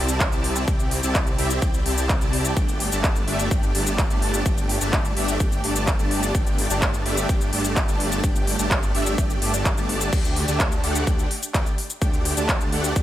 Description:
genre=EDM, festival progressive house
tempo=127 BPM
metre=4/4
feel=straight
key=unclear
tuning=A4 = 440 Hz
part: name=supersaw chords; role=riff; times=0.0-13.0 s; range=A3 to A5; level=-26 LUFS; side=right 1 dB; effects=ensemble chorus, sidechain pumping, digital delay
part: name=detuned saw bass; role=bass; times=0.0-13.0 s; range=G1 to D2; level=-26 LUFS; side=equal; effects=sidechain pumping
part: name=big-room dance drum kit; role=drums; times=0.1-13.0 s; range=crash cymbal, handclaps, hi-hat, shaker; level=-26 LUFS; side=left 1 dB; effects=overdrive, studio reverb
part: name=electronic kick drum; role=drums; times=0.2-13.0 s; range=none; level=-23 LUFS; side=equal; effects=overdrive, studio reverb
room=little or no reverb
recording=none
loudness=-20 LUFS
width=side -13 dB against mid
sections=0.0-10.1 A section; 10.1-13.0 A section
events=drop 0.0-10.1, 10.1-13.0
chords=0.0 Cadd9; 2.6 Gsus2; 10.1 Dsus4

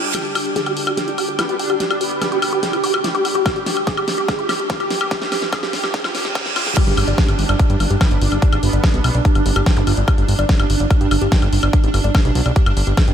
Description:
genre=psychedelic trance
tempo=145 BPM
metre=4/4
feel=straight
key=G major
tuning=A4 = 440 Hz
part: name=pulsing gated texture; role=sustained chords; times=0.0-13.1 s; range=D4 to G4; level=-25 LUFS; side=right 6 dB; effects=chorus, built-in reverb, sidechain pumping
part: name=woody wave-folded pluck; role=riff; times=0.0-13.1 s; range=F4 to G5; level=-24 LUFS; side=moving between left 6 dB and right 4 dB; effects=chorus, auto-pan, sidechain pumping, diffuse ambient delay
part: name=reverse cymbal, riser and zap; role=sound effects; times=0.0-6.8, 9.8-9.9 s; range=none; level=-30 LUFS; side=right 3 dB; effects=none
part: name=granular cloud pad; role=texture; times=0.0-6.8 s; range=D4 to D6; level=-29 LUFS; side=left 1 dB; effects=built-in reverb, sidechain pumping
part: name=big-room dance drum kit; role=drums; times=0.1-13.1 s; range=crash cymbal, hi-hat, snare drum, woodblock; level=-22 LUFS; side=left 1 dB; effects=studio ambience
part: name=metallic wobble bass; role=second line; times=1.4-2.6, 8.0-9.2 s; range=B3 to D4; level=-33 LUFS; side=right 2 dB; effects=distortion, ensemble chorus, sidechain pumping, high-pass filter, analog delay
part: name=electronic kick drum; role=drums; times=3.5-13.1 s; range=none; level=-16 LUFS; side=equal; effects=studio ambience
part: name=fat analog bass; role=bass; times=6.9-13.1 s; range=G1 to G2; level=-17 LUFS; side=equal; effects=none
room=moderate huge ambient reverb, RT60 7.7 s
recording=dreamy mix soaked in reverb, high-pass filter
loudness=-15 LUFS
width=side -9 dB against mid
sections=0.1-6.8 A section; 6.8-13.1 B section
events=build-up 0.1-6.8; drum fill 0.1-6.8; riser 0.1-6.8; filter sweep on synth arpeggio sound 0.1-6.8; filter sweep on synth texture 0.1-6.8; filter sweep 0.1-6.8; reverse cymbal 5.9-6.8; drop 6.8-13.1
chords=0.1 G5

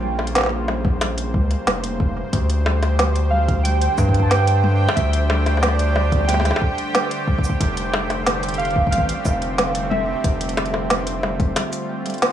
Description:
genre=IDM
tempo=91 BPM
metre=4/4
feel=straight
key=unclear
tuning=A4 = 440 Hz
part: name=warbly lo-fi synth keys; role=melody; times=0.0-12.3 s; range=D5 to A5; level=-25 LUFS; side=right 4 dB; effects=chorus, vintage 12-bit sampler grit, analog delay
part: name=warm analog pad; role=sustained chords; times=0.0-12.3 s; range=Db3 to C5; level=-28 LUFS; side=left 1 dB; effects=chorus
part: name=concert harp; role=arpeggios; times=0.0-12.3 s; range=G2 to G4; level=-30 LUFS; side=right 2 dB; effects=analog delay
part: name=round analog bass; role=bass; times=0.0-11.6 s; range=F1 to G2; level=-21 LUFS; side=equal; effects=none
part: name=organic electronic drum kit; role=drums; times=0.2-12.3 s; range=bongos, hi-hat, shaker, snare drum, toms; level=-22 LUFS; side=equal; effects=studio reverb
part: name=electronic kick drum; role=drums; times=0.8-11.5 s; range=none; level=-20 LUFS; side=equal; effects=studio reverb
part: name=bubbling stepped-filter texture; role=texture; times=2.7-12.3 s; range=G4 to G5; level=-29 LUFS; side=right 2 dB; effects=chorus, built-in reverb
room=digital ambience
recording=dry, gritty hardware recording, transformer saturation, small room ambience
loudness=-17 LUFS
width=side -10 dB against mid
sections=0.0-12.3 A section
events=none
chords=0.0 Bbmadd9; 2.3 D7sus4; 7.6 Fmaj7

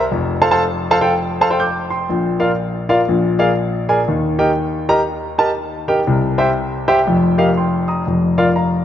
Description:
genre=gospel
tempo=121 BPM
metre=4/4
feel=swing 62% on 8ths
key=Bb major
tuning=A4 = 440 Hz
part: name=clear grand piano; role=solo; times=0.0-8.8 s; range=F1 to G6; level=-14 LUFS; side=equal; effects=none
room=moderate concert hall reverb, RT60 2.4 s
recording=nothing above 7.6 kHz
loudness=-14 LUFS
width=side -10 dB against mid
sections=0.0-2.1 A section; 2.1-8.8 B section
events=none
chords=0.1 F; 2.1 Bb; 3.1 Bb7; 4.1 Eb; 6.1 C; 7.1 F9sus4; 8.1 Bb/F

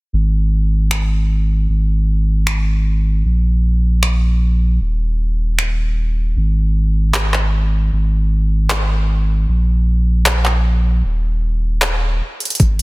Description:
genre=future bass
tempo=154 BPM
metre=4/4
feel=half-time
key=unclear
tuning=A4 = 440 Hz
part: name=saturated sub bass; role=bass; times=0.1-12.8 s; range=D#1 to A#1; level=-15 LUFS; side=equal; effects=sidechain pumping
part: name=dubstep drum kit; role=drums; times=0.9-12.8 s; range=finger snaps, handclaps, hi-hat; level=-20 LUFS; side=equal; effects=overdrive
part: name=electronic kick drum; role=drums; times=12.6-12.7 s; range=none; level=-12 LUFS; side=equal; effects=overdrive
room=little or no reverb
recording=dense, heavily limited modern master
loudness=-14 LUFS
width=side -23 dB against mid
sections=0.1-12.8 A section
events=break 12.2-12.6; drum fill 12.4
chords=none

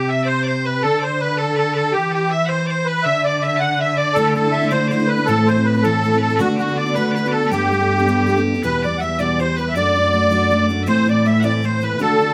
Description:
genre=celtic folk, Celtic jig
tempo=108 BPM (dotted quarters)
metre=6/8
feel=straight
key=G major, E minor from 8.6 s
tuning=A4 = 439 Hz
part: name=musette accordion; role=melody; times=0.0-12.3 s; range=F#4 to F#5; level=-21 LUFS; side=equal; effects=none
part: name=loud bright bagpipes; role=second line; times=0.0-12.3 s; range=F#4 to A5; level=-29 LUFS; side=equal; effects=none
part: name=dark cello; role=bass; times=0.0-12.3 s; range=E2 to E3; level=-25 LUFS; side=equal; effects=none
part: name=picked steel-string acoustic guitar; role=accompaniment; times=4.2-12.3 s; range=E2 to A4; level=-22 LUFS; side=equal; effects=none
room=moderate small room reverb, RT60 0.5 s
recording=none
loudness=-18 LUFS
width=mono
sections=0.0-8.6 A section; 8.6-12.3 B section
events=none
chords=0.0 C5; 0.8 Bm7/D; 1.9 Cmaj7/E; 3.1 Dadd9; 4.2 Dsus2; 5.3 Am; 6.4 D6; 7.5 Gadd9; 8.6 Em; 9.8 D/F#; 10.9 Am

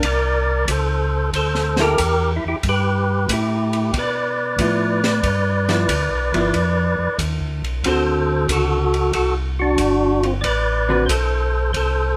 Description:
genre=soul jazz organ trio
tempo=92 BPM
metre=4/4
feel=swing 69% on 8ths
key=unclear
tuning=A4 = 439 Hz
part: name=percussive tonewheel organ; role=melody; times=0.0-12.2 s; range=C4 to D5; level=-22 LUFS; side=equal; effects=slow rotary speaker, overdrive
part: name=mellow tonewheel organ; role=bass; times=0.0-12.2 s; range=G1 to B2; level=-24 LUFS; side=equal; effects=slow rotary speaker
part: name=compact cocktail drum kit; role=drums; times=0.0-12.0 s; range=hi-hat, kick drum, ride cymbal, snare drum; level=-29 LUFS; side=equal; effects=none
part: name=vintage hollow-body jazz guitar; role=accompaniment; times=1.8-11.1 s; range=D3 to B4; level=-24 LUFS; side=equal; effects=none
room=moderate studio reverb, RT60 0.7 s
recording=none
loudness=-19 LUFS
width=mono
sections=0.0-12.2 A section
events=none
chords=0.0 C13; 2.6 G13; 7.8 D6

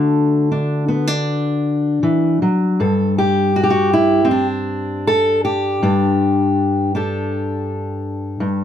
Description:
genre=folk, solo fingerstyle acoustic guitar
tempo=80 BPM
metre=4/4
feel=rubato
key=unclear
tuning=A4 = 441 Hz
part: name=fingerpicked steel-string acoustic guitar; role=solo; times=0.0-8.6 s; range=G2 to A4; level=-15 LUFS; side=left 1 dB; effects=none
room=light reverb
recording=none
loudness=-15 LUFS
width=side -9 dB against mid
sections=0.0-2.8 A section; 2.8-8.6 B section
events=none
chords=0.0 D; 2.8 Gsus2

